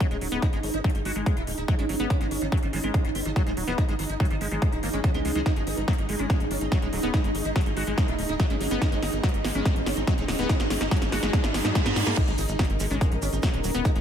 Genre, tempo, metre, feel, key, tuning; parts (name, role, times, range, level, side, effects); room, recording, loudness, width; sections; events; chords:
psychedelic trance; 143 BPM; 4/4; straight; A4 = 440 Hz
sitar; melody; 0.0-14.0 s; D#3 to F#4; -33 LUFS; equal; phaser, sidechain pumping, ping-pong delay
pulsing gated texture; sustained chords; 0.0-14.0 s; D#4 to A#4; -33 LUFS; right 4 dB; chorus, built-in reverb, sidechain pumping
liquid acid bass; riff; 0.0-14.0 s; F#3 to B3; -34 LUFS; left 2 dB; chorus, auto-pan, sidechain pumping, tape echo
big-room dance drum kit; drums; 0.0-14.0 s; crash cymbal, hi-hat, snare drum; -33 LUFS; equal
electronic kick drum; drums; 0.0-13.9 s; -24 LUFS; equal
riser, reverse cymbal and sub drop; sound effects; 3.7-13.9 s; -36 LUFS; right 1 dB
granular cloud pad; texture; 0.2-14.0 s; D#4 to D#5; -36 LUFS; equal; built-in reverb, sidechain pumping
tight sequencer bass; bass; 0.1-14.0 s; D#1 to G#2; -31 LUFS; equal
vowel-sweep wobble bass; second line; 0.6-0.8, 5.7-9.0 s; G#3 to C#4; -46 LUFS; left 2 dB
cabasa; percussion; 12.2-13.9 s; -39 LUFS; right 5 dB
light reverb; -23 LUFS; side -9 dB against mid
0.0-12.2 A section; 12.2-14.0 B section
build-up 0.0-12.2; riser 3.7-12.2; drum fill 5.5-12.2; reverse cymbal 11.3-12.2; drop 12.2-14.0; impact 12.2-13.9
0.0 G#5